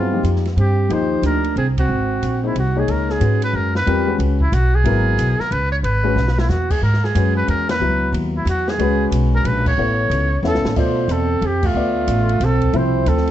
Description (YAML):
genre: modal jazz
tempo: 183 BPM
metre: 3/4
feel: swing 64% on 8ths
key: C# dorian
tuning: A4 = 443 Hz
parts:
  - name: trumpet with metal mute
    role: melody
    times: 0.0-13.3 s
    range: E4 to C#5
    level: -22 LUFS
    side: right 1 dB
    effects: none
  - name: dark alto saxophone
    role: second line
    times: 0.0-2.7, 10.4-13.3 s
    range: A3 to F4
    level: -24 LUFS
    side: right 6 dB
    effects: none
  - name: dark concert grand piano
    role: accompaniment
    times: 0.0-13.2 s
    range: B2 to E5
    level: -22 LUFS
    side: left 4 dB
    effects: none
  - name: upright bass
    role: bass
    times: 0.0-13.3 s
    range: Ab1 to G#2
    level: -19 LUFS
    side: equal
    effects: none
  - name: open jazz drum kit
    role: drums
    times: 0.2-13.3 s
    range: crash cymbal, hi-hat, kick drum, ride cymbal, snare drum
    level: -27 LUFS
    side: equal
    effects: none
room: light reverb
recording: dark, warm production, nothing above 8.0 kHz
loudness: -16 LUFS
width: side -12 dB against mid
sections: 0.0-2.9 A section; 2.9-10.8 B section; 10.8-13.3 C section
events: band accent 1.7, 7.6, 9.6, 11.6; drum fill 6.2-6.5, 10.4-10.8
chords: 0.0 Cmadd9; 1.9 Ab7; 2.9 C#m7; 9.8 A; 10.8 Dm7; 12.7 Am